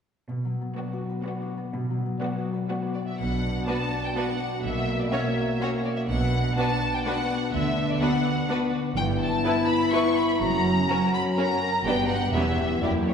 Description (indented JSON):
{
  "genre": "cinematic, playful, whimsical film cue",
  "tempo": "124 BPM",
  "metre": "3/4",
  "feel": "straight",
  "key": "B minor",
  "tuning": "A4 = 440 Hz",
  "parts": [
    { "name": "concert harp", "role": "arpeggios", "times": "0.3-13.1 s", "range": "E2 to D5", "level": "-31 LUFS", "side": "left 2 dB", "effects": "none" },
    { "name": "rich studio cello section", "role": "bass", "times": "0.3-13.1 s", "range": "E2 to D3", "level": "-31 LUFS", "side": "right 3 dB", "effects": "none" },
    { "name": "warm studio violin section", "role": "melody", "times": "0.8-13.1 s", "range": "C#5 to C#6", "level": "-29 LUFS", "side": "left 2 dB", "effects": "none" },
    { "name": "rich studio violin section", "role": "second line", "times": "0.8-12.9 s", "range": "C#4 to C#5", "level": "-34 LUFS", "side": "left 1 dB", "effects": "none" },
    { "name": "warm studio viola section", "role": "accompaniment", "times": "0.8-12.9 s", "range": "F#3 to E4", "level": "-32 LUFS", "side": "right 1 dB", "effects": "none" },
    { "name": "mellow French horn section", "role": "sustained chords", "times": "3.2-13.1 s", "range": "A#3 to G4", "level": "-28 LUFS", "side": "left 2 dB", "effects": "none" },
    { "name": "clear studio double bass section", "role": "bass", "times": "3.2-13.1 s", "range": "E1 to D2", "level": "-33 LUFS", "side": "right 3 dB", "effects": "none" }
  ],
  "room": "wet concert hall reverb, RT60 2.0 s",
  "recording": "recorded in a church or concert hall",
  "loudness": "-23 LUFS",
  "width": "side -7 dB against mid",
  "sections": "0.3-3.2 A section; 3.2-13.1 B section",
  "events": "none",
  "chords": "0.3 Bm; 4.6 F#7/B; 6.1 Bm; 7.5 Bm/D; 9.0 Em/G; 10.4 F#; 11.9 G; 12.3 C#m7b5/E"
}